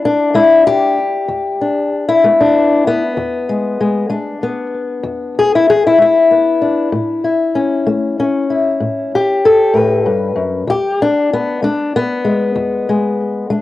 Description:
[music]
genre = acoustic country blues, solo or duo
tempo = 64 BPM (dotted quarters)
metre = 12/8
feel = straight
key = E mixolydian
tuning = A4 = 439 Hz
[part]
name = fingerpicked old ladder-braced acoustic guitar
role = solo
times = 0.0-13.6 s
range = E2 to B4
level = -12 LUFS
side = left 2 dB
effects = cassette tape, analog delay
[sound]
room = light reverb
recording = home recording on cassette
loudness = -12 LUFS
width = side -15 dB against mid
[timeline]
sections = 0.0-13.6 A section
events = none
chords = 0.0 E7; 6.9 A7; 10.7 E7

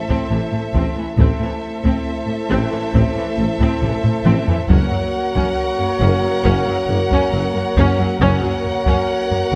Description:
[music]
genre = cinematic, epic orchestral film score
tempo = 68 BPM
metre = 4/4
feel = straight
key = unclear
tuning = A4 = 444 Hz
[part]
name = rich chamber violin section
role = melody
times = 0.0-9.6 s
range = E5 to F#5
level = -29 LUFS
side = equal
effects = none
[part]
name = warm symphonic violin section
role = second line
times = 0.0-9.6 s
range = A4 to A#4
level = -31 LUFS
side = equal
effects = none
[part]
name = mellow French horn section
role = sustained chords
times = 0.0-9.6 s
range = A3 to E4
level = -27 LUFS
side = equal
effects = none
[part]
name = dark trumpet section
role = stabs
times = 0.0-9.6 s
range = C5 to C#5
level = -29 LUFS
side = equal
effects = none
[part]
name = warm symphonic viola section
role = accompaniment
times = 0.1-9.6 s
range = E3 to C#4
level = -27 LUFS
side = equal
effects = none
[part]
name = clear symphonic cello section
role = bass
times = 0.1-9.6 s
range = F#2 to A2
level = -25 LUFS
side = equal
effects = none
[part]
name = taiko ensemble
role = drums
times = 0.1-9.6 s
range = none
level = -22 LUFS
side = equal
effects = none
[part]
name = dark symphonic double bass section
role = bass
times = 0.3-9.6 s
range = F#1 to A1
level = -25 LUFS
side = equal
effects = none
[part]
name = mellow tuba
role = bass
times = 0.3-9.6 s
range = F#1 to A1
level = -28 LUFS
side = equal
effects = none
[sound]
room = moderate scoring stage reverb, RT60 1.6 s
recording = none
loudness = -18 LUFS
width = mono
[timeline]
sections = 0.0-9.6 A section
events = drum fill 3.8-4.7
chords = 0.0 Am; 4.7 F#

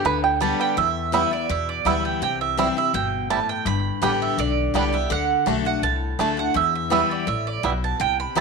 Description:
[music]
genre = bluegrass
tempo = 166 BPM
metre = 4/4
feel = straight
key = unclear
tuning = A4 = 440 Hz
[part]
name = bluegrass banjo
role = melody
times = 0.0-8.4 s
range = G3 to G5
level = -24 LUFS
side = right 8 dB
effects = slapback echo
[part]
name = picked steel-string acoustic guitar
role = accompaniment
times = 0.0-8.4 s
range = E2 to G4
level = -26 LUFS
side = left 13 dB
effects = none
[part]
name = upright bass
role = bass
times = 0.0-8.4 s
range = G1 to E2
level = -28 LUFS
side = left 1 dB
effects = none
[part]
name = mandolin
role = melody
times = 0.4-8.4 s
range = D5 to B5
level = -23 LUFS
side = right 12 dB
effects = slapback echo
[sound]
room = moderate echo chamber reverb, RT60 1.4 s, studio reverb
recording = 1960s-style stereo with parts hard left and right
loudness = -20 LUFS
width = side -4 dB against mid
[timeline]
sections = 0.8-8.4 A section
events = none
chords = 0.0 G; 0.8 Em; 2.2 C; 3.7 G; 5.1 D; 6.6 Em

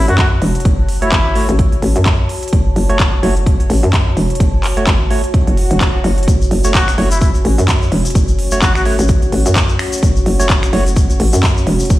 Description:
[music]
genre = bass house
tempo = 128 BPM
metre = 4/4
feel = swing 57% on 16ths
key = F# minor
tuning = A4 = 440 Hz
[part]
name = trumpet with cup mute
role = melody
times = 0.0-1.5, 6.7-8.8 s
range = E4 to F#4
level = -22 LUFS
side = left 1 dB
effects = digital delay
[part]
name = hollow knocking FM bass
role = bass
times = 0.0-12.0 s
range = E1 to F#2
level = -15 LUFS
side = equal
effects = overdrive, sidechain pumping
[part]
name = warbly tape-like pad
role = texture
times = 0.0-12.0 s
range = F#4 to A5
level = -24 LUFS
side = equal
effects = chorus, built-in reverb, sidechain pumping
[part]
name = big-room dance drum kit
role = drums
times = 0.1-12.0 s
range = finger snaps, handclaps, hi-hat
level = -21 LUFS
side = equal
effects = studio reverb
[part]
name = electronic kick drum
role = drums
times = 0.2-12.0 s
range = none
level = -13 LUFS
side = equal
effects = studio reverb
[part]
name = percussive organ stab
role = stabs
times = 1.0-10.8 s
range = A3 to C#5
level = -22 LUFS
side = right 2 dB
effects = chorus, sidechain pumping, digital delay
[part]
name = swell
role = sound effects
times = 5.4-6.3 s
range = none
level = -26 LUFS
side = equal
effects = none
[part]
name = dark analog pad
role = sustained chords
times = 6.3-12.0 s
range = A3 to F#4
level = -25 LUFS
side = left 1 dB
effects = chorus, sidechain pumping
[part]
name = tube shaker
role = percussion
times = 6.3-12.0 s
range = none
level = -26 LUFS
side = left 4 dB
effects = none
[sound]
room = digital ambience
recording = played on a big sound system in a bare room, stone room reverb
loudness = -11 LUFS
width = side -16 dB against mid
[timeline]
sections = 0.0-12.0 A section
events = swell 5.4-6.3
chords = 0.0 F#m

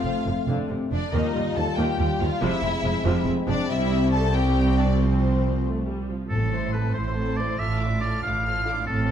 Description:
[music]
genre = cinematic, heroic adventure film score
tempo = 93 BPM (dotted quarters)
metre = 6/8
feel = straight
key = unclear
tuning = A4 = 440 Hz
[part]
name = warm symphonic violin section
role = melody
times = 0.0-9.1 s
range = C5 to F6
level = -32 LUFS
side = left 4 dB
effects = none
[part]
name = warm symphonic violin section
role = second line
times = 0.0-9.1 s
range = C4 to C5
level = -33 LUFS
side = left 3 dB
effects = none
[part]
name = dark symphonic viola section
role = accompaniment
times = 0.0-9.1 s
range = C3 to F4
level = -30 LUFS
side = equal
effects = none
[part]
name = mellow French horn section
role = sustained chords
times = 0.0-6.1 s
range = F3 to F4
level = -30 LUFS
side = left 5 dB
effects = none
[part]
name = warm symphonic double bass section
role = bass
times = 0.0-9.1 s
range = F1 to Eb2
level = -26 LUFS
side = right 2 dB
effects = none
[part]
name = warm symphonic cello section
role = bass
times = 0.1-9.1 s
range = C2 to A2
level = -28 LUFS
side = right 2 dB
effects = none
[part]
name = bright oboe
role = second line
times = 6.3-9.1 s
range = A4 to F5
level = -28 LUFS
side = equal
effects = none
[part]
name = timpani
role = percussion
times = 6.3-6.9 s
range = A2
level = -30 LUFS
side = left 1 dB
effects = none
[sound]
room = wet recital hall reverb, RT60 1.6 s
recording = dark, warm production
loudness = -21 LUFS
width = side -9 dB against mid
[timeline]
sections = 0.0-6.3 A section; 6.3-9.1 B section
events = none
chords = 0.0 F; 1.1 Ebadd9; 2.4 Fm; 3.7 C; 5.0 Csus4; 6.3 Am; 7.6 Dm/A

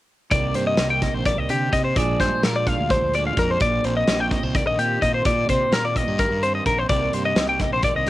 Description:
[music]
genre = math rock and midwest emo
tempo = 256 BPM (eighths)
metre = 7/8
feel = straight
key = Eb major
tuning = A4 = 441 Hz
[part]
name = clean electric guitar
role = accompaniment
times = 0.3-8.1 s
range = Bb2 to Ab4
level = -28 LUFS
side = right 6 dB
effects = cassette tape
[part]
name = twelve-string electric guitar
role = arpeggios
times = 0.3-8.1 s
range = G4 to G5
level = -21 LUFS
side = left 2 dB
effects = cassette tape
[part]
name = fuzz fingered electric bass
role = bass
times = 0.3-8.1 s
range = Bb1 to C3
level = -26 LUFS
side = equal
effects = overdrive
[part]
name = loose indie drum kit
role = drums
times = 0.3-8.1 s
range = hi-hat, kick drum, snare drum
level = -24 LUFS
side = equal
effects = cassette tape
[sound]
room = light reverb, small room ambience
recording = home recording on cassette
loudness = -18 LUFS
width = side -16 dB against mid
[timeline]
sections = 0.3-8.1 A section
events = none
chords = 0.3 Cm7; 2.0 Bb7; 3.6 Eb6/Bb; 6.9 Cm7

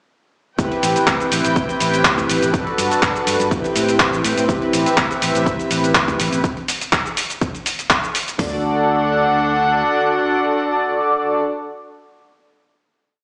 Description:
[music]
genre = filtered disco house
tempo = 123 BPM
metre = 4/4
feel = swing 53% on 16ths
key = D mixolydian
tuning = A4 = 440 Hz
[part]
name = mellow synth brass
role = accompaniment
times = 0.6-11.4 s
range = C4 to D5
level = -21 LUFS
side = equal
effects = chorus, phaser, cassette tape, sidechain pumping
[part]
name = warm studio string section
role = sustained chords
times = 0.6-11.4 s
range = C4 to A5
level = -25 LUFS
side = equal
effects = sidechain pumping
[part]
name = fingered electric bass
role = bass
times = 0.6-9.8 s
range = G1 to A2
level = -28 LUFS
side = equal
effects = tube saturation, sidechain pumping
[part]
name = dusty soul sampler-style drum kit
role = drums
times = 0.6-8.4 s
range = handclaps, hi-hat, shaker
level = -22 LUFS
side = equal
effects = sidechain pumping on hats, sidechain pumping on perc
[part]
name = house drum kit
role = drums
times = 0.6-8.5 s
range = hi-hat, kick drum, toms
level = -26 LUFS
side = equal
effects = none
[sound]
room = moderate echo chamber reverb, RT60 1.7 s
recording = played on a big sound system in a bare room, large studio reverb, small speaker sound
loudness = -18 LUFS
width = mono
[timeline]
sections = 0.6-8.4 drop; 8.4-12.3 final chord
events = drop 0.6-8.4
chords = 0.6 D13sus4; 2.5 Gmaj9; 3.5 Am9; 4.5 D13sus4; 6.4 N.C.; 8.4 D

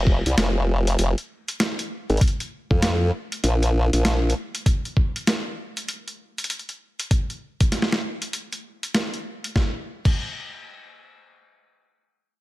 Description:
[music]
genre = glitch hop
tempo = 98 BPM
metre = 4/4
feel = swing 62% on 16ths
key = unclear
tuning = A4 = 439 Hz
[part]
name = formant-sweep wobble bass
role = bass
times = 0.0-4.3 s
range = F1 to F2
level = -20 LUFS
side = equal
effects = chorus, tube saturation
[part]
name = electronic kick drum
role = drums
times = 0.1-10.2 s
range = none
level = -20 LUFS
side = equal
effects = none
[part]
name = boom bap sampler-style drum kit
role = drums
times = 0.3-10.2 s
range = crash cymbal, hi-hat, snare drum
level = -26 LUFS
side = equal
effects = none
[sound]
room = little or no reverb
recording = none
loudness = -21 LUFS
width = side -17 dB against mid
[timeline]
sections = 0.0-9.6 A section; 9.6-12.0 B section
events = none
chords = none

